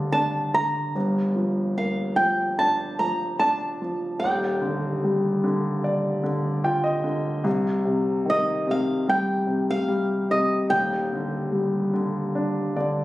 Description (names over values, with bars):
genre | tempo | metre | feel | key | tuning
acoustic folk-pop ballad | 74 BPM | 4/4 | straight | unclear | A4 = 440 Hz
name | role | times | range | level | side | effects
flamenco guitar | melody | 0.0-13.0 s | Eb5 to Bb5 | -24 LUFS | right 1 dB | none
warm grand piano | accompaniment | 0.0-13.0 s | Eb1 to G5 | -23 LUFS | left 1 dB | none
room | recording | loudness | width
light reverb | recorded on a phone in the room, studio reverb, compression | -22 LUFS | side -16 dB against mid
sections
0.0-13.0 A section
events
none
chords
0.0 Ebmaj7; 1.0 Gm7; 4.2 Ebmaj9; 7.5 Cm; 10.7 Ebmaj7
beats
0.13 | 0.95 1.77 2.59 3.40 | 4.21 5.02 5.83 6.64 | 7.46 8.27 9.08 9.89 | 10.71 11.53 12.35